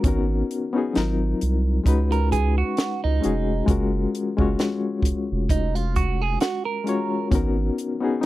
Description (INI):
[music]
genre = R&B, neo-soul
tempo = 66 BPM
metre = 4/4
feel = swing 56% on 16ths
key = F# major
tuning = A4 = 440 Hz
[part]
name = barky reed electric piano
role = accompaniment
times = 0.0-8.3 s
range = F#3 to C#5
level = -25 LUFS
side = left 4 dB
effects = overdrive, fast tremolo
[part]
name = compact cocktail drum kit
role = drums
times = 0.0-8.3 s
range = hi-hat, kick drum, snare drum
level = -23 LUFS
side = equal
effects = none
[part]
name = saturated sub bass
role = bass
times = 0.1-7.7 s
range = E#1 to C#2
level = -23 LUFS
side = equal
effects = none
[part]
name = clean electric guitar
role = second line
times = 2.1-7.3 s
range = D#4 to A#4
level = -27 LUFS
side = right 8 dB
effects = phaser
[sound]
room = little or no reverb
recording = dry, close 1970s-style studio recording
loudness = -20 LUFS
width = side -16 dB against mid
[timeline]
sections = 0.0-8.3 A section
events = none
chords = 0.0 G#m11; 0.9 G#13; 1.9 C#9sus4; 3.7 F#maj9; 7.3 G#m11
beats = | 0.04 0.95 1.86 2.77 | 3.68 4.59 5.50 6.40 | 7.31 8.22